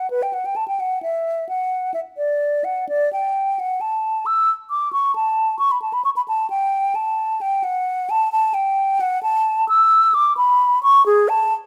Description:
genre	classical, baroque-style fantasia for unaccompanied flute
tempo	88 BPM (dotted quarters)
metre	12/8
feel	rubato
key	unclear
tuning	A4 = 440 Hz
part	mellow hollow silver concert flute	solo	0.0-11.5 s	G#4 to E6	-19 LUFS	equal	none
room	moderate stone room reverb, RT60 1.2 s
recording	none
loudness	-19 LUFS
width	mono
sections	0.0-11.7 A section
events	none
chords	none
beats	| 0.11 0.80 1.48 2.17 | 2.89 3.59 4.26 4.93 | 5.60 6.28 6.96 7.64 | 8.32 9.00 9.68 10.37 | 11.05

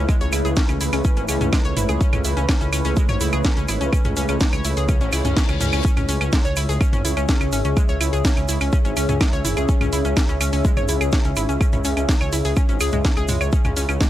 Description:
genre	melodic techno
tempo	125 BPM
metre	4/4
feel	straight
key	C# minor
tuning	A4 = 440 Hz
part	deep dark ambient pad	sustained chords	0.0-14.1 s	A3 to E5	-27 LUFS	left 1 dB	chorus, built-in reverb, sidechain pumping
part	analog pluck	arpeggios	0.0-14.1 s	G#3 to C#5	-27 LUFS	left 1 dB	chorus, sidechain pumping, tape echo
part	swelling detuned saw bass	bass	0.0-14.0 s	G#1 to C#2	-23 LUFS	equal	sidechain pumping
part	electronic kick drum	drums	0.1-14.1 s	none	-19 LUFS	equal	none
part	house drum kit	drums	0.1-14.1 s	claves, hi-hat, snare drum, toms	-25 LUFS	right 1 dB	none
part	tube shaker	percussion	0.1-14.1 s	none	-34 LUFS	right 4 dB	none
part	reverse cymbal	sound effects	5.1-5.8 s	none	-33 LUFS	left 6 dB	none
room	little or no reverb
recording	dry, gritty hardware recording, transformer saturation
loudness	-17 LUFS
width	side -13 dB against mid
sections	0.0-14.1 A section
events	reverse cymbal 5.1-5.8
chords	0.0 Aadd9; 5.8 C#m; 13.5 Aadd9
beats	| 0.09 0.57 1.05 1.53 | 2.01 2.49 2.97 3.45 | 3.93 4.41 4.89 5.37 | 5.85 6.33 6.81 7.29 | 7.77 8.25 8.73 9.21 | 9.69 10.17 10.65 11.13 | 11.61 12.09 12.57 13.05 | 13.53 14.01

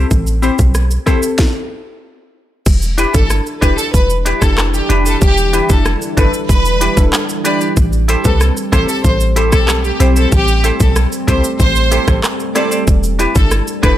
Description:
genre	dancehall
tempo	94 BPM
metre	4/4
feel	straight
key	A minor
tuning	A4 = 445 Hz
part	semi-hollow electric guitar	arpeggios	0.0-14.0 s	D4 to C5	-21 LUFS	equal	none
part	warm 808-style bass	bass	0.0-14.0 s	E1 to C2	-15 LUFS	equal	none
part	island pop drum kit	drums	0.1-14.0 s	crash cymbal, handclaps, hi-hat, kick drum, rim click, shaker, snare drum	-15 LUFS	equal	overdrive
part	glassy wavetable pluck	accompaniment	0.4-14.0 s	C4 to C5	-20 LUFS	left 2 dB	chorus
part	deep dark ambient pad	sustained chords	3.9-14.0 s	E3 to D4	-23 LUFS	right 2 dB	chorus, built-in reverb, sidechain pumping
part	clear studio violin section	melody	3.1-14.0 s	G4 to D5	-19 LUFS	equal	digital delay
room	digital ambience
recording	none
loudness	-11 LUFS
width	side -12 dB against mid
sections	0.0-2.7 A section; 2.7-14.0 B section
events	stop 1.4-2.7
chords	0.0 Am7; 2.7 Em7; 7.8 Am7; 12.9 Em7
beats	| 0.11 0.75 1.39 2.02 | 2.66 3.30 3.94 4.58 | 5.22 5.86 6.49 7.13 | 7.77 8.41 9.05 9.69 | 10.32 10.96 11.60 12.24 | 12.88 13.52

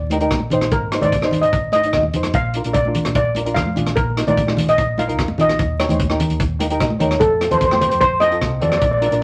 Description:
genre	calypso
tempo	148 BPM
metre	4/4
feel	straight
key	Eb major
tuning	A4 = 439 Hz
part	hollow-body short-scale fingered electric bass	bass	0.0-9.2 s	Ab1 to F2	-27 LUFS	equal	none
part	tenor ukulele	accompaniment	0.1-9.2 s	C4 to F5	-25 LUFS	equal	none
part	warm soul drum kit	drums	0.1-9.2 s	hi-hat, kick drum, rim click	-25 LUFS	equal	none
part	congas	percussion	0.1-8.7 s	none	-26 LUFS	equal	none
part	steel pan	melody	0.7-9.2 s	A4 to F5	-21 LUFS	equal	none
room	moderate small room reverb, RT60 0.5 s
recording	vinyl crackle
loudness	-18 LUFS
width	mono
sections	0.0-9.2 A section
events	ukulele fill 6.4-7.2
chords	0.0 Eb; 0.7 Ab; 2.3 Bb7; 4.0 Bb7sus4; 5.6 Eb7; 7.2 F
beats	0.31 | 0.71 1.12 1.53 1.93 | 2.34 2.74 3.15 3.56 | 3.96 4.37 4.77 5.18 | 5.58 5.99 6.39 6.80 | 7.21 7.61 8.02 8.42 | 8.82 9.23

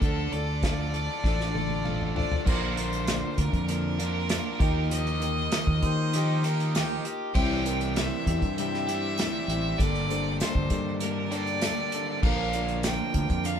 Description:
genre	folk rock and heartland rock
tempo	98 BPM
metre	4/4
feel	straight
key	unclear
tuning	A4 = 440 Hz
part	bright fiddle	melody	0.0-13.6 s	A4 to G5	-33 LUFS	right 2 dB	none
part	picked steel-string acoustic guitar	accompaniment	0.0-13.6 s	G2 to Bb4	-36 LUFS	left 4 dB	none
part	reed electric piano	accompaniment	0.0-13.5 s	Bb3 to A5	-39 LUFS	right 5 dB	overdrive
part	bright tonewheel organ	sustained chords	0.0-13.6 s	A3 to A5	-42 LUFS	right 1 dB	none
part	overdriven electric guitar	riff	0.0-13.6 s	G2 to Bb4	-33 LUFS	equal	none
part	fingered electric bass	bass	0.0-13.6 s	G1 to Eb3	-29 LUFS	equal	none
part	unplugged drum kit	drums	0.0-13.6 s	crash cymbal, hi-hat, kick drum, snare drum, toms	-28 LUFS	equal	none
part	tambourine	percussion	3.1-13.0 s	none	-42 LUFS	left 7 dB	none
part	bright harmonica	second line	5.8-7.0 s	G4 to C5	-34 LUFS	right 9 dB	none
room	moderate studio reverb, RT60 0.6 s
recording	band playing live in one room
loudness	-24 LUFS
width	side -8 dB against mid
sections	0.0-2.5 A section; 2.5-13.6 B section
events	drum fill 1.2-2.5; reed electric piano fill 1.2-2.5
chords	0.0 Dm; 2.5 Bb; 4.6 Ebadd9; 7.4 C; 9.8 Gmadd9; 12.2 Bb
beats	| 0.02 0.63 1.25 1.86 | 2.47 3.08 3.69 4.30 | 4.91 5.52 6.13 6.74 | 7.35 7.96 8.57 9.18 | 9.79 10.40 11.01 11.62 | 12.23 12.85 13.46

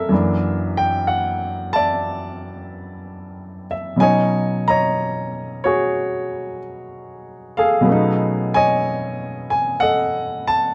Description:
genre	solo jazz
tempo	62 BPM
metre	4/4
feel	swing 69% on 8ths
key	unclear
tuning	A4 = 439 Hz
part	warm baby grand piano	solo	0.0-10.7 s	Gb2 to Bb5	-21 LUFS	equal	none
room	moderate studio ambience, RT60 0.5 s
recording	dark, warm production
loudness	-20 LUFS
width	mono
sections	0.0-10.7 A section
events	none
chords	0.1 Gb7alt; 4.0 B13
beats	| 0.11 1.08 2.05 3.02 | 3.99 4.96 5.93 6.90 | 7.87 8.84 9.81

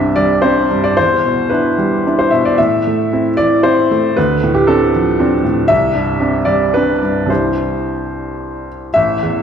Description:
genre	neoclassical minimalist piano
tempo	108-118 BPM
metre	3/4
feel	rubato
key	C major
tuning	A4 = 441 Hz
part	clear upright piano	solo	0.0-9.4 s	A1 to E5	-12 LUFS	equal	none
room	wet recital hall reverb, RT60 1.5 s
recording	heard from further back in the room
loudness	-12 LUFS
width	side -8 dB against mid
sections	0.0-8.9 A section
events	none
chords	0.0 Cadd9; 1.0 Em7; 2.6 Am; 4.2 Dm7; 5.7 Cadd9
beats	0.42 | 0.96 1.50 2.04 | 2.58 3.11 3.64 | 4.17 4.68 5.19 | 5.70 6.22 6.75 | 7.29 7.84 8.39 | 8.94

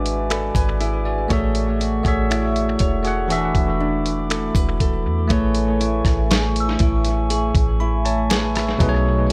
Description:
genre	contemporary R&B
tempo	60 BPM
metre	4/4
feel	straight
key	A major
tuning	A4 = 444 Hz
part	barky tine electric piano	accompaniment	0.0-9.3 s	B2 to B5	-26 LUFS	equal	analog delay
part	glass harmonica	sustained chords	0.0-9.3 s	A3 to D6	-30 LUFS	equal	sidechain pumping
part	nylon-string guitar	arpeggios	0.0-9.3 s	B2 to C#5	-29 LUFS	equal	analog delay
part	soft 808-style bass	bass	0.0-9.3 s	E1 to E2	-25 LUFS	equal	none
part	dusty soul sampler-style drum kit	drums	0.1-9.3 s	finger snaps, hi-hat, kick drum, rim click, snare drum	-24 LUFS	equal	analog delay
part	soft synth bell	texture	6.3-8.7 s	C#6 to E6	-36 LUFS	equal	chorus, analog delay
room	digital ambience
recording	echo-heavy mix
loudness	-20 LUFS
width	mono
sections	0.0-5.3 A section; 5.3-9.3 B section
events	none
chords	0.0 E7/G#; 1.3 F#m7/A; 3.3 E7sus4; 5.3 Amaj7; 8.8 B13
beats	0.30 | 1.30 2.30 3.30 4.30 | 5.30 6.30 7.30 8.30 | 9.30

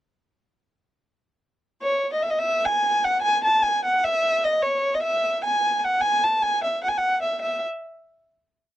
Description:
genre	balkan folk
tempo	free time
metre	none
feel	none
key	E major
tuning	A4 = 440 Hz
part	dark violin	solo	1.8-7.6 s	C#5 to A5	-20 LUFS	equal	none
room	little or no reverb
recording	dry, close 1970s-style studio recording, lossy compression artefacts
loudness	-20 LUFS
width	side -13 dB against mid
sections	1.8-7.4 A section; 7.4-8.8 final note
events	none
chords	none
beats	free time

